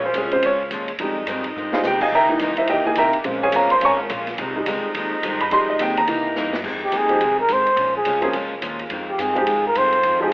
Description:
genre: jazz, big band swing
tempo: 212 BPM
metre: 4/4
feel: swing 61% on 8ths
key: F minor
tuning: A4 = 440 Hz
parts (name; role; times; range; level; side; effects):
- picked steel-string acoustic guitar; accompaniment; 0.0-10.2 s; F2 to F4; -28 LUFS; left 1 dB; none
- warm baby grand piano; accompaniment; 0.0-10.3 s; Db3 to Db6; -19 LUFS; right 1 dB; none
- dark saxophone section; sustained chords; 0.0-10.3 s; C3 to F4; -28 LUFS; equal; none
- upright bass; bass; 0.0-10.3 s; G1 to C3; -36 LUFS; equal; none
- swinging big-band drum kit; drums; 0.1-10.1 s; crash cymbal, hi-hat, kick drum, ride cymbal, snare drum; -29 LUFS; equal; none
- breathy trumpet; melody; 6.8-10.3 s; G4 to C5; -17 LUFS; equal; none
room: moderate large studio reverb, RT60 1.1 s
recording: telephone sound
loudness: -17 LUFS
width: side -24 dB against mid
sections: 0.0-6.6 A section; 6.6-10.3 A section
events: grand piano solo 0.0-6.6; drum fill 1.6, 6.4; trumpet solo 6.6-10.3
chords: 0.0 Bbm7; 1.0 Fm7; 2.1 C7#9; 3.3 Bbm7; 4.4 Fm7; 6.1 C7#9; 6.6 Fm7; 7.8 Bbm7; 8.9 Fm7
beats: 0.14 0.42 0.71 | 0.99 1.27 1.55 1.84 | 2.12 2.40 2.69 2.97 | 3.25 3.53 3.82 4.10 | 4.38 4.66 4.95 5.23 | 5.51 5.79 6.08 6.36 | 6.64 6.93 7.21 7.49 | 7.78 8.06 8.34 8.63 | 8.91 9.19 9.47 9.76 | 10.04 10.32

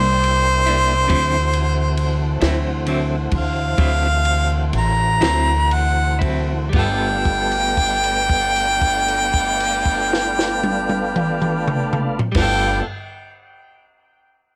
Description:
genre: slow blues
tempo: 38-47 BPM (dotted quarters)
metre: 12/8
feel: straight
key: G mixolydian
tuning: A4 = 440 Hz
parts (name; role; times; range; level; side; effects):
- warm harmonica; melody; 0.0-12.8 s; C5 to Bb5; -22 LUFS; equal; cassette tape
- clean electric guitar; accompaniment; 0.0-12.9 s; D3 to A4; -29 LUFS; equal; tremolo, cassette tape
- tonewheel organ; sustained chords; 0.0-12.8 s; E3 to G4; -29 LUFS; equal; chorus vibrato, lush chorus, cassette tape
- upright bass; bass; 0.0-12.8 s; G1 to D2; -24 LUFS; equal; none
- compact cocktail drum kit; drums; 0.2-12.6 s; crash cymbal, kick drum, ride cymbal, snare drum, toms; -26 LUFS; equal; cassette tape
room: light reverb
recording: home recording on cassette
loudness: -18 LUFS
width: mono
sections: 0.0-6.7 A section; 6.7-13.0 B section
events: slowing down 0.0-6.7; harmonica solo 0.0-6.7; held note 6.7-12.4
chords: 0.0 C9; 1.1 D9; 6.7 G9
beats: | 1.09 2.41 3.78 5.21 | 6.73 8.29 9.85 11.41

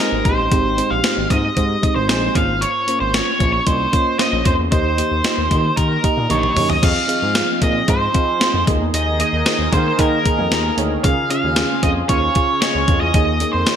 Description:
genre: 1980s-style pop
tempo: 114 BPM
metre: 4/4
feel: straight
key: unclear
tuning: A4 = 439 Hz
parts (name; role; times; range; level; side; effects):
- octave-fuzz lead guitar; melody; 0.0-13.8 s; Bb4 to F5; -20 LUFS; equal; distortion, digital delay
- mellow FM electric piano; accompaniment; 0.0-13.8 s; Ab2 to F5; -22 LUFS; right 2 dB; chorus
- smooth gliding synth bass; bass; 0.1-13.6 s; Ab1 to Eb3; -22 LUFS; left 1 dB; none
- clean 12-bit digital drum machine; drums; 0.3-13.8 s; crash cymbal, hi-hat, kick drum, snare drum, toms; -19 LUFS; left 1 dB; gated reverb
- sweeping resonant pad; sustained chords; 6.8-13.8 s; Db3 to Bb4; -25 LUFS; right 1 dB; chorus
room: moderate plate reverb, RT60 1.6 s, digital ambience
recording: bright 1980s-style digital production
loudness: -15 LUFS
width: side -8 dB against mid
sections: 0.0-6.8 A section; 6.8-13.8 B section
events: drum fill 6.3-6.8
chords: 0.0 Ab; 2.4 Bbmadd9/Ab; 4.7 Eb; 6.8 Fm7; 8.7 Ebsus4; 11.0 Db; 13.1 Ebsus4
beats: | 0.51 1.04 1.57 2.09 | 2.62 3.15 3.67 4.20 | 4.72 5.25 5.78 6.30 | 6.83 7.36 7.88 8.41 | 8.94 9.46 9.99 10.51 | 11.04 11.57 12.09 12.62 | 13.15 13.67

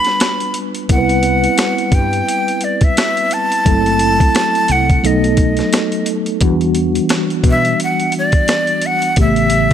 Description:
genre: hip hop, jazz-hop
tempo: 87 BPM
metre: 4/4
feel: swing 58% on 16ths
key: E minor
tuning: A4 = 440 Hz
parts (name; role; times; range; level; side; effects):
- breathy bright jazz flute; melody; 0.0-9.7 s; D5 to B5; -16 LUFS; equal; none
- mellow tine electric piano; accompaniment; 0.0-9.7 s; C#3 to B4; -17 LUFS; equal; medium stereo tremolo
- boom bap sampler-style drum kit; drums; 0.0-9.7 s; hi-hat, kick drum, snare drum; -17 LUFS; equal; none
- woody fretless electric bass; bass; 0.9-9.7 s; F#1 to B2; -19 LUFS; equal; none
room: light reverb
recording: none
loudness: -12 LUFS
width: side -9 dB against mid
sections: 0.0-6.4 A section; 6.4-9.7 B section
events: flute solo 6.4-9.7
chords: 0.0 G7; 0.9 Cmaj7; 3.7 F#m7b5; 5.0 B7; 6.4 Em9; 9.2 A9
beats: 0.21 | 0.90 1.59 2.28 2.97 | 3.66 4.35 5.04 5.73 | 6.42 7.11 7.79 8.48 | 9.18

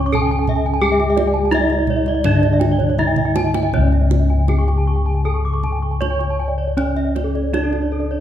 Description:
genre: Balinese gamelan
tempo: 79-88 BPM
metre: 4/4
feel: straight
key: C# pelog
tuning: A4 = 440 Hz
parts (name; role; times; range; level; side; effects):
- gamelan-type bronze metallophone; melody; 0.0-8.2 s; C#4 to C#5; -22 LUFS; right 1 dB; none
- gamelan-type bronze metallophone; accompaniment; 0.0-3.7 s; D3 to C#4; -24 LUFS; left 1 dB; none
- gamelan-type bronze metallophone; arpeggios; 0.0-8.1 s; A4-40c to C#6; -26 LUFS; right 5 dB; none
- gamelan-type bossed gongs; bass; 0.0-8.2 s; C#2 to G#4-45c; -18 LUFS; left 1 dB; none
- gamelan-type bronze metallophone; arpeggios; 0.1-8.2 s; A4-40c to D6; -26 LUFS; left 4 dB; none
- kendang; percussion; 0.1-7.8 s; none; -26 LUFS; right 7 dB; none
room: moderate recital hall reverb, RT60 1.4 s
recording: dark, warm production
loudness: -15 LUFS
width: side -10 dB against mid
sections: 0.0-3.7 A section; 3.7-8.2 B section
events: drum fill 2.8-3.7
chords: none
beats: 0.13 | 0.82 1.53 2.25 2.98 | 3.73 4.49 5.25 6.01 | 6.77 7.53

